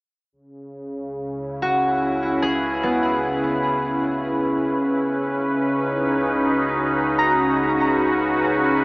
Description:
ambient; 74 BPM; 3/4; straight; C# dorian; A4 = 440 Hz
evolving wavetable pad; sustained chords; 0.3-8.8 s; C#3 to B4; -20 LUFS; equal; chorus, built-in reverb
round analog bass; bass; 0.3-8.8 s; C#2; -42 LUFS; equal
concert harp; arpeggios; 1.6-8.8 s; B3 to A#5; -24 LUFS; equal; tape echo
wet huge ambient reverb, RT60 7.6 s; in a vast, echoing space, small speaker sound; -18 LUFS; side -37 dB against mid
0.3-8.8 A section
0.3 C#m7; 5.2 Badd9/C#
| 0.33 1.15 1.97 | 2.77 3.58 4.38 | 5.19 6.00 6.82 | 7.63 8.46

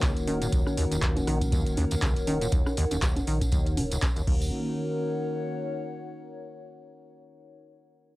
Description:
acid house; 120 BPM; 4/4; swing 57% on 16ths; Eb minor; A4 = 438 Hz
warbly tape-like pad; sustained chords; 0.0-4.5 s; Eb3 to Gb4; -35 LUFS; equal; chorus, built-in reverb, sidechain pumping, cassette tape
acid bass, saw; riff; 0.0-4.5 s; Eb1 to Eb3; -30 LUFS; equal; analog chorus, cassette tape, sidechain pumping
booming analog drum machine; drums; 0.0-4.4 s; congas, crash cymbal, handclaps, hi-hat, rim click; -32 LUFS; equal; cassette tape
electronic kick drum; drums; 0.0-4.4 s; -27 LUFS; equal; cassette tape
tambourine; percussion; 0.0-4.5 s; -41 LUFS; right 2 dB
warbly tape-like pad; texture; 0.0-6.5 s; Eb4 to Gb5; -34 LUFS; left 1 dB; chorus, built-in reverb, sidechain pumping, cassette tape
warm sub bass; bass; 0.2-4.5 s; Eb1 to Bb1; -34 LUFS; equal; sidechain pumping
light reverb; home recording on cassette; -24 LUFS; side -18 dB against mid
0.0-4.5 A section; 4.5-6.5 B section
0.0 Ebm7
0.02 | 0.52 1.02 1.52 2.02 | 2.52 3.02 3.52 4.02 | 4.52 5.02 5.52 6.02

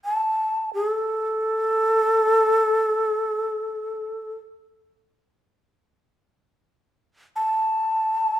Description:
japanese traditional, Japanese chamber music; free time; A4 = 441 Hz
breathy mellow shakuhachi; solo; 0.1-8.4 s; A4 to A5; -20 LUFS; equal
moderate recital hall reverb, RT60 1.3 s; minimal, uncompressed stereo recording; -20 LUFS; side -12 dB against mid
0.0-5.4 A section; 5.4-8.4 A section
free time

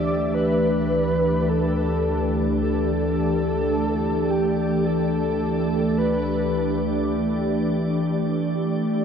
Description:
ambient; free time; A4 = 440 Hz
breathy flute-like synth lead; melody; 0.0-6.8 s; G4 to D5; -26 LUFS; equal; ensemble chorus, tape echo
glassy FM pad; sustained chords; 0.0-9.0 s; D2 to D5; -21 LUFS; equal; ensemble chorus, built-in reverb
wet huge ambient reverb, RT60 7.9 s; dark, warm production; -20 LUFS; side -7 dB against mid
0.0-9.0 A section
0.0 G69/D; 7.1 Dsus2
free time

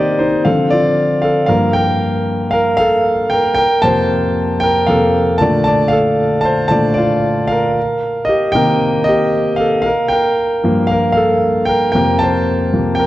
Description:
pop; 115 BPM; 4/4; straight; G minor; A4 = 440 Hz
warm concert grand piano; solo; 0.0-13.1 s; F2 to A5; -12 LUFS; equal
wet concert hall reverb, RT60 2.1 s; worn, warbling old tape, cassette tape, warbly pitch drift; -12 LUFS; side -15 dB against mid
0.0-1.5 A section; 1.5-13.1 A section
grand piano solo 0.0-1.5, 1.5-13.1
0.5 Dm7; 1.5 Gm7; 3.6 Fsus4; 5.4 Bbmaj7; 7.8 Cm7; 9.8 Gm7; 11.9 Fsus4
0.46 0.98 | 1.50 2.02 2.54 3.06 | 3.59 4.11 4.63 5.15 | 5.67 6.20 6.72 7.24 | 7.76 8.28 8.80 9.33 | 9.85 10.37 10.89 11.41 | 11.94 12.46 12.98

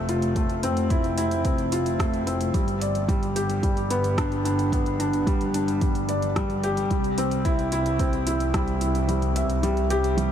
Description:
piano and strings electronica; 110 BPM; 4/4; straight; A4 = 440 Hz
felt-muted upright piano; riff; 0.0-10.3 s; G3 to E5; -24 LUFS; equal; tape echo
warm symphonic double bass section; bass; 0.0-10.3 s; F1 to C2; -28 LUFS; equal; tube saturation, sidechain pumping
deep house drum kit; drums; 0.1-10.3 s; hi-hat, rim click; -36 LUFS; right 1 dB; studio reverb
electronic kick drum; drums; 0.4-8.7 s; -26 LUFS; equal; studio reverb
moderate huge ambient reverb, RT60 7.8 s; dreamy mix soaked in reverb; -22 LUFS; side -9 dB against mid
0.0-10.3 A section
kick drops out 9.1-10.3
0.0 Fmaj7; 2.5 G; 6.9 C
| 0.36 0.91 1.45 2.00 | 2.54 3.09 3.63 4.18 | 4.72 5.27 5.82 6.36 | 6.91 7.45 8.00 8.54 | 9.09 9.63 10.18

